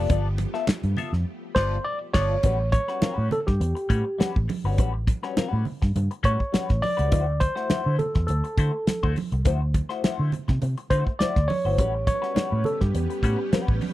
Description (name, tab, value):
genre	funk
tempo	103 BPM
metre	4/4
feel	straight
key	A mixolydian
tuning	A4 = 440 Hz
part	clean electric guitar	accompaniment	0.0-13.8 s	G3 to E5	-31 LUFS	left 8 dB	wah
part	string machine, violins	sustained chords	0.0-2.4, 11.8-13.9 s	F3 to G4	-36 LUFS	right 1 dB	ensemble chorus
part	vintage muted fingered electric bass	bass	0.0-13.8 s	G1 to D3	-25 LUFS	equal	none
part	damped 70s drum kit	drums	0.1-13.9 s	crash cymbal, hi-hat, kick drum, snare drum	-24 LUFS	equal	none
part	congas	percussion	0.1-13.9 s	none	-33 LUFS	right 5 dB	none
part	group handclap	percussion	0.7-0.8 s	none	-37 LUFS	left 2 dB	none
part	tine electric piano	melody	1.5-13.6 s	G4 to D5	-27 LUFS	right 1 dB	phaser, slapback echo
room	little or no reverb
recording	dry, close 1970s-style studio recording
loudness	-22 LUFS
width	side -15 dB against mid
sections	0.0-2.4 A section; 2.4-13.9 B section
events	band accent 1.3-2.4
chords	0.0 G9; 2.4 A13; 7.1 D9; 11.8 A13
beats	| 0.10 0.68 1.27 1.85 | 2.44 3.02 3.61 4.20 | 4.78 5.37 5.95 6.54 | 7.12 7.70 8.29 8.87 | 9.45 10.04 10.62 11.20 | 11.78 12.36 12.94 13.52